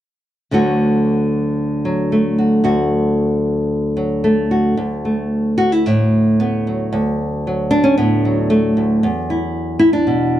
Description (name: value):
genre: folk, solo fingerstyle acoustic guitar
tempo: 113 BPM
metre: 4/4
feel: rubato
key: D major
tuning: A4 = 439 Hz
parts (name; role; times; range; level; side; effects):
- nylon-string guitar; solo; 0.5-10.4 s; D2 to F#4; -14 LUFS; equal; none
room: light reverb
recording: dry, close 1970s-style studio recording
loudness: -14 LUFS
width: side -12 dB against mid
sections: 0.5-4.8 A section; 4.8-10.4 B section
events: none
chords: 0.5 D; 9.0 Esus2